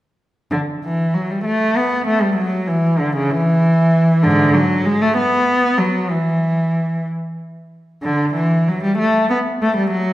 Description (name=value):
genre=classical, baroque-style suite movement for unaccompanied cello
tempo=64 BPM (dotted quarters)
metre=6/8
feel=rubato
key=unclear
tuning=A4 = 440 Hz
part: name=rich cello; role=solo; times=0.5-10.1 s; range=G#2 to B3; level=-15 LUFS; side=equal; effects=none
room=wet recital hall reverb, RT60 1.7 s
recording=recorded in a church or concert hall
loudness=-15 LUFS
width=side -15 dB against mid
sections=0.5-10.1 A section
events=none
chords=none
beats=| 0.53 1.48 | 2.40 3.32 | 4.24 5.16 | 6.10 7.06 | 8.03 8.99 | 9.93